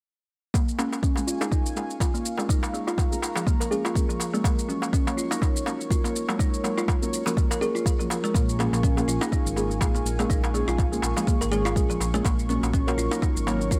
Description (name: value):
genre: afro house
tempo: 123 BPM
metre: 4/4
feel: swing 56% on 16ths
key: Bb minor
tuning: A4 = 438 Hz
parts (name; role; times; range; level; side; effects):
- warm analog pad; sustained chords; 1.0-13.8 s; Bb4 to Db6; -37 LUFS; equal; chorus, sidechain pumping
- kalimba; arpeggios; 0.5-13.8 s; F3 to Bb4; -31 LUFS; equal; sidechain pumping, low-pass filter, dub echo
- electronic kick drum; drums; 0.5-13.8 s; none; -26 LUFS; equal; none
- shaker; drums; 0.5-13.8 s; none; -38 LUFS; equal; overdrive
- darbuka; percussion; 0.5-13.6 s; none; -36 LUFS; equal; none
- deep mellow chord stab; stabs; 0.8-13.8 s; Gb3 to Bb4; -34 LUFS; equal; lush chorus, sidechain pumping, dub echo
- smooth synth bass; bass; 8.3-13.8 s; Ab1 to Bb1; -31 LUFS; equal; sidechain pumping
room: digital ambience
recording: none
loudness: -25 LUFS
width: mono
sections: 0.5-13.8 A section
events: filter sweep on kalimba 0.5-13.8; filter sweep on synth stab 0.5-13.8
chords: 0.5 Bbm7; 4.4 Gb; 8.3 Bbm7; 12.2 Gb